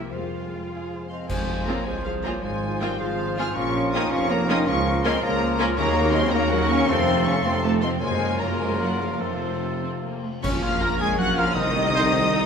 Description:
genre	classical, dramatic, fast romantic movement for symphony orchestra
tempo	97-110 BPM (dotted quarters)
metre	6/8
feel	rubato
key	F minor, Bb minor from 5.8 s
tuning	A4 = 440 Hz
part	rich symphonic violin section	melody	0.0-12.5 s	C5 to Bb6	-30 LUFS	left 2 dB	none
part	warm symphonic violin section	second line	0.0-12.5 s	Eb4 to Bb5	-33 LUFS	left 3 dB	none
part	rich symphonic viola section	accompaniment	0.0-12.5 s	F3 to F4	-30 LUFS	right 2 dB	none
part	concert harp	arpeggios	0.0-12.5 s	F2 to C6	-32 LUFS	left 9 dB	none
part	warm chamber double bass section	bass	0.0-12.5 s	F1 to Gb2	-31 LUFS	right 4 dB	none
part	rich symphonic cello section	bass	0.1-12.5 s	C3 to F4	-30 LUFS	right 1 dB	none
part	mellow hollow silver concert flute	second line	1.1-12.5 s	F4 to Bb5	-31 LUFS	left 2 dB	none
part	dark French horn section	sustained chords	1.1-12.0 s	C3 to F4	-31 LUFS	left 3 dB	none
part	clear clarinet	second line	1.3-12.5 s	Db4 to Bb4	-33 LUFS	left 2 dB	none
part	clear oboe	second line	1.3-12.5 s	A4 to Bb5	-32 LUFS	right 1 dB	none
part	clear bassoon	accompaniment	1.3-10.2 s	C3 to F3	-32 LUFS	right 2 dB	none
part	mellow tuba	bass	1.3-12.5 s	F1 to Eb2	-30 LUFS	right 3 dB	none
part	clash cymbals, concert bass drum and cymbal swell	percussion	1.3-2.0, 8.0-11.2 s	none	-34 LUFS	equal	none
part	mellow trumpet	stabs	10.8-12.0 s	Bb4 to C5	-30 LUFS	right 1 dB	none
room	wet scoring stage reverb, RT60 1.6 s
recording	minimal, uncompressed stereo recording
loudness	-21 LUFS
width	side -6 dB against mid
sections	0.0-1.3 A section; 1.3-10.4 B section; 10.4-12.5 C section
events	band accent 1.3-1.7, 10.4-10.8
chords	0.1 Fm; 2.4 Fm/Ab; 3.6 Bbm; 4.7 Bbm/Db; 5.8 Ebm7; 6.9 F; 8.0 Gbmaj7; 9.2 F; 10.4 Bbm; 11.6 Adim/C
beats	| 0.11 0.71 | 1.30 1.87 | 2.44 3.01 | 3.57 4.12 | 4.68 5.23 | 5.78 6.33 | 6.89 7.46 | 8.02 8.61 | 9.22 9.83 | 10.44 11.01 | 11.57 12.13

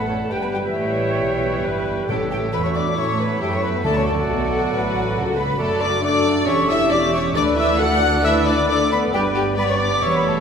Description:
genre	quick classical-period movement for symphony orchestra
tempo	136 BPM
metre	4/4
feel	rubato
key	D major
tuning	A4 = 441 Hz
part	warm chamber violin section	melody	0.0-10.4 s	E4 to F#5	-30 LUFS	left 4 dB	none
part	bright oboe	second line	0.0-10.4 s	D5 to G5	-29 LUFS	right 1 dB	none
part	warm chamber violin section	second line	0.0-10.4 s	E4 to F#5	-26 LUFS	left 2 dB	none
part	dark bassoon	accompaniment	0.0-10.4 s	G3 to D4	-27 LUFS	right 2 dB	none
part	warm chamber viola section	accompaniment	0.0-10.4 s	E4 to D5	-27 LUFS	left 1 dB	none
part	mellow French horn section	sustained chords	0.0-10.4 s	E3 to F#4	-26 LUFS	left 1 dB	none
part	dark chamber cello section	bass	0.0-10.4 s	D2 to A3	-27 LUFS	right 3 dB	none
part	warm chamber double bass section	bass	0.0-10.4 s	E1 to A2	-28 LUFS	right 2 dB	none
part	bright small flute group	second line	0.1-10.3 s	E5 to F#6	-24 LUFS	left 2 dB	none
part	warm clarinet	second line	0.1-10.4 s	G4 to C#5	-29 LUFS	equal	none
part	timpani	percussion	2.1-4.5 s	A2 to D3	-30 LUFS	left 1 dB	none
room	wet concert hall reverb, RT60 2.5 s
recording	minimal, uncompressed stereo recording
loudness	-17 LUFS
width	side -7 dB against mid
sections	0.0-10.4 A section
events	none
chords	0.3 Em/G; 2.1 A; 3.9 D; 5.6 D/F#; 6.5 C#dim/E; 7.4 D; 9.1 G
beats	| 0.31 0.76 1.21 1.65 | 2.09 2.53 2.98 3.42 | 3.85 4.28 4.72 5.16 | 5.59 6.03 6.47 6.92 | 7.36 7.80 8.24 8.68 | 9.13 9.57 10.03

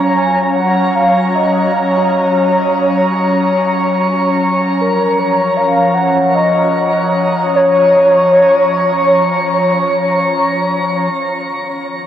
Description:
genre	ambient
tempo	free time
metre	none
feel	none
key	unclear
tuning	A4 = 440 Hz
part	warm velvety synth lead	melody	0.0-10.3 s	A#4 to A#5	-14 LUFS	equal	chorus, diffuse ambient delay
part	airy breathy pad	sustained chords	0.0-12.1 s	D#3 to A#5	-14 LUFS	equal	chorus
room	wet shimmer reverb, RT60 8.0 s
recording	worn, warbling old tape, cassette tape, warbly pitch drift, nothing above 10.4 kHz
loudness	-11 LUFS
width	side -10 dB against mid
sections	0.0-11.1 A section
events	none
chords	0.0 F#; 4.8 A#m; 11.1 Bmaj9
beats	free time

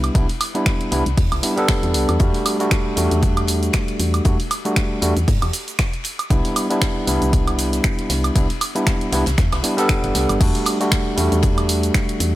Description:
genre	deep house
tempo	117 BPM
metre	4/4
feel	swing 56% on 16ths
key	E minor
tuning	A4 = 441 Hz
part	overdriven tine electric piano	stabs	0.0-12.4 s	G3 to A4	-21 LUFS	equal	sidechain pumping, tape echo
part	woody FM bass	bass	0.0-12.4 s	G1 to G2	-21 LUFS	equal	sidechain pumping
part	open jazz drum kit	drums	0.0-12.3 s	hi-hat, ride cymbal, snare drum	-33 LUFS	left 3 dB	high-pass filter on cymbals, high-pass filter on hats, high-pass filter on snare, high-pass filter on room
part	punchy analog drum machine	drums	0.0-12.3 s	cabasa, crash cymbal, finger snaps, hi-hat, woodblock	-24 LUFS	right 2 dB	none
part	electronic kick drum	drums	0.1-12.1 s	none	-19 LUFS	equal	none
room	small room reverb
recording	none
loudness	-16 LUFS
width	side -16 dB against mid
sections	0.0-10.4 A section; 10.4-12.4 B section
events	drop 10.4-12.4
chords	0.0 Cmaj9; 2.2 Em11; 6.3 Cmaj9; 10.4 Em11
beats	| 0.15 0.66 1.18 1.69 | 2.20 2.71 3.23 3.74 | 4.25 4.77 5.28 5.79 | 6.30 6.82 7.33 7.84 | 8.36 8.87 9.38 9.89 | 10.41 10.92 11.43 11.95

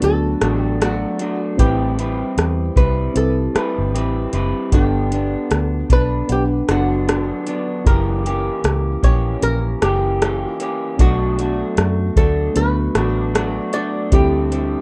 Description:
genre	indie pop, bedroom pop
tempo	77 BPM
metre	4/4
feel	swing 60% on 16ths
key	unclear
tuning	A4 = 439 Hz
part	archtop guitar, miked and amplified	melody	0.0-14.8 s	F#4 to D5	-26 LUFS	equal	lush chorus
part	electric guitar through a small old amp	accompaniment	0.0-14.8 s	F#2 to B4	-25 LUFS	equal	subtle chorus, warbly pitch drift
part	reed electric piano	accompaniment	0.0-14.8 s	A3 to F#5	-29 LUFS	equal	none
part	vintage muted fingered electric bass	bass	0.0-14.7 s	F#1 to F#2	-23 LUFS	equal	none
part	soft vintage rhythm box	drums	0.0-14.7 s	hi-hat, kick drum, rim click	-20 LUFS	equal	none
room	moderate small room reverb, RT60 0.6 s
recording	rough home demo mix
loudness	-18 LUFS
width	mono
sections	0.0-14.8 A section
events	none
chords	0.0 Bm7; 1.6 Am9; 4.7 Gmaj7; 7.9 F#7b9; 11.0 Bm7; 14.1 D9sus4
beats	0.02 0.81 | 1.59 2.38 3.16 3.94 | 4.73 5.51 6.29 7.08 | 7.86 8.64 9.43 10.21 | 10.99 11.77 12.56 13.34 | 14.12

